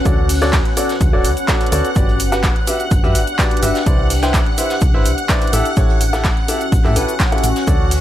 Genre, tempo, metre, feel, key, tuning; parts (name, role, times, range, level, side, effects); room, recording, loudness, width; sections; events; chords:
piano house; 126 BPM; 4/4; straight; A4 = 438 Hz
string machine, violins; sustained chords; 0.0-8.0 s; F#5 to F#6; -25 LUFS; equal; ensemble chorus, sidechain pumping
deep dark ambient pad; texture; 0.0-8.0 s; C#4 to B4; -24 LUFS; left 2 dB; chorus, built-in reverb, sidechain pumping
warm upright piano; riff; 0.1-7.9 s; E4 to G5; -21 LUFS; equal; sidechain pumping, digital delay
solid FM bass; bass; 0.1-8.0 s; D1 to A2; -19 LUFS; equal; sidechain pumping
electronic kick drum; drums; 0.1-7.8 s; -16 LUFS; equal
house drum kit; drums; 0.1-8.0 s; handclaps, hi-hat, shaker; -23 LUFS; equal; overdrive
vintage brush drum kit; drums; 0.1-8.0 s; hi-hat, shaker, snare drum; -30 LUFS; equal; high-pass filter on hats, high-pass filter on snare, high-pass filter on perc, high-pass filter on room
small room ambience; -13 LUFS; side -12 dB against mid
0.0-8.0 A section
0.1 Dmaj7; 2.0 Gmaj7; 3.9 Cmaj9; 5.5 A7